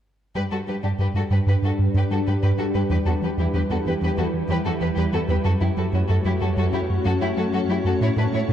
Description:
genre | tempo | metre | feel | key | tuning
cinematic | 94 BPM | 4/4 | straight | unclear | A4 = 441 Hz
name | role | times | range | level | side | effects
rich symphonic violin section | second line | 0.4-8.5 s | C#4 to C#5 | -29 LUFS | left 3 dB | none
soft additive organ-like pad | sustained chords | 0.7-8.5 s | G3 to C#5 | -26 LUFS | left 1 dB | ensemble chorus, built-in reverb, low-pass filter
smooth synth bass | riff | 0.4-8.5 s | E2 to A3 | -23 LUFS | right 1 dB | low-pass filter
clear symphonic cello section | bass | 0.4-8.5 s | E2 to A2 | -28 LUFS | right 2 dB | none
room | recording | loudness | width
moderate scoring stage reverb, RT60 1.9 s | dark, warm production | -20 LUFS | side -10 dB against mid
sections
0.4-8.5 A section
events
filter sweep 0.4-8.5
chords
0.4 G; 2.9 Em; 5.5 F#m; 8.0 A

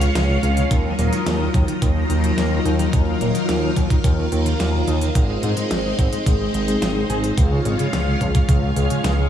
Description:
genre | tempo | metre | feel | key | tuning
synthwave | 108 BPM | 4/4 | straight | Eb dorian | A4 = 442 Hz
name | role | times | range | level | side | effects
string machine, full ensemble | sustained chords | 0.0-9.3 s | Gb3 to F5 | -23 LUFS | equal | phaser, ensemble chorus, sidechain pumping
mellow electric guitar | riff | 0.0-9.3 s | Db3 to Ab4 | -27 LUFS | left 1 dB | lush chorus, digital delay
fat analog bass | bass | 0.0-9.3 s | Eb1 to Ab2 | -20 LUFS | equal | none
pop drum kit | drums | 0.0-9.2 s | hi-hat, snare drum | -29 LUFS | equal | none
electronic kick drum | drums | 0.7-8.6 s | none | -18 LUFS | equal | overdrive
room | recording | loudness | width
light reverb, digital ambience | small room ambience | -17 LUFS | side -10 dB against mid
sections
0.0-9.3 A section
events
none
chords
0.0 Db; 0.7 Ebmadd9; 5.2 Ab; 7.4 Db

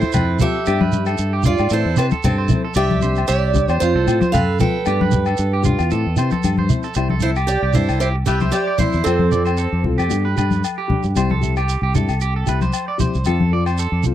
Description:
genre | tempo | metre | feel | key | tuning
highlife guitar band | 114 BPM | 4/4 | straight | C major | A4 = 439 Hz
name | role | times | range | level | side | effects
picked acoustic archtop guitar | melody | 0.0-10.6 s | C4 to G5 | -22 LUFS | right 4 dB | none
nylon-string guitar | accompaniment | 0.0-14.1 s | E3 to A4 | -26 LUFS | left 9 dB | none
electric guitar at the edge of break-up | arpeggios | 0.0-14.0 s | F4 to E5 | -26 LUFS | right 5 dB | spring reverb, tape echo
congas | percussion | 0.0-13.5 s | none | -21 LUFS | left 2 dB | none
shekere | percussion | 0.0-14.1 s | none | -24 LUFS | right 5 dB | none
fingered electric bass | bass | 0.1-14.1 s | C2 to C3 | -19 LUFS | equal | none
agogo bells | percussion | 0.1-13.8 s | none | -29 LUFS | left 16 dB | none
bright alto saxophone | second line | 7.3-10.1 s | C4 to G4 | -28 LUFS | left 8 dB | none
room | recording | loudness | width
light reverb | dry, close 1970s-style studio recording | -16 LUFS | side -11 dB against mid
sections
0.0-7.0 A section; 7.0-14.1 B section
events
none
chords
0.0 F; 0.7 G; 1.7 Am; 2.8 Cadd9; 3.8 F; 4.9 G; 5.9 Am; 7.0 C; 9.1 F; 10.1 G; 11.2 C; 13.3 F

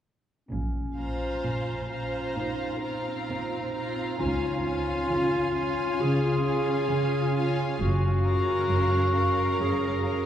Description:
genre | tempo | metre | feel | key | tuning
cinematic, emotional film score for orchestra | 66 BPM | 4/4 | rubato | Bb minor | A4 = 440 Hz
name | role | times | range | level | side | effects
warm clarinet | second line | 0.5-10.3 s | Db4 to Ab4 | -28 LUFS | equal | none
rich studio double bass section | bass | 0.5-8.6 s | Gb1 to Db2 | -33 LUFS | right 1 dB | none
warm studio cello section | bass | 0.5-10.3 s | Gb2 to Db3 | -31 LUFS | right 1 dB | none
rich studio violin section | second line | 1.0-10.3 s | F5 to Bb5 | -35 LUFS | left 2 dB | none
rich studio viola section | accompaniment | 1.0-10.3 s | C4 to C5 | -32 LUFS | equal | none
room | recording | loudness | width
wet cathedral reverb, RT60 6.5 s | heard from further back in the room | -24 LUFS | side -10 dB against mid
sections
0.5-10.3 A section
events
none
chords
0.5 Bbmadd9; 4.2 Db; 7.8 Gbmaj7

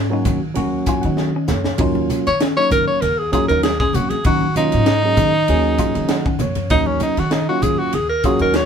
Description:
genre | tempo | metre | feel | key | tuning
electric jazz fusion | 98 BPM | 4/4 | swing 54% on 16ths | Eb minor | A4 = 441 Hz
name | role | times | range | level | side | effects
clean electric guitar | stabs | 0.0-8.7 s | Bb3 to F4 | -27 LUFS | left 3 dB | none
upright bass | bass | 0.0-8.7 s | Eb2 to Eb3 | -22 LUFS | right 1 dB | none
bright tine electric piano | accompaniment | 0.1-8.6 s | Gb3 to Ab5 | -22 LUFS | right 2 dB | none
crisp fusion drum kit | drums | 0.3-8.7 s | hi-hat, kick drum, ride cymbal, snare drum | -23 LUFS | equal | none
congas | percussion | 0.3-8.4 s | none | -27 LUFS | left 1 dB | none
clear tenor saxophone | melody | 2.3-8.7 s | Db4 to Db5 | -18 LUFS | equal | none
room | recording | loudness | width
moderate small room reverb, RT60 0.5 s | band playing live in one room | -15 LUFS | side -7 dB against mid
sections
0.0-8.7 A section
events
tenor saxophone solo 0.0-8.7; tine electric piano fill 0.6-1.8, 5.8-6.7; drum fill 1.2-1.8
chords
0.0 Ebm9

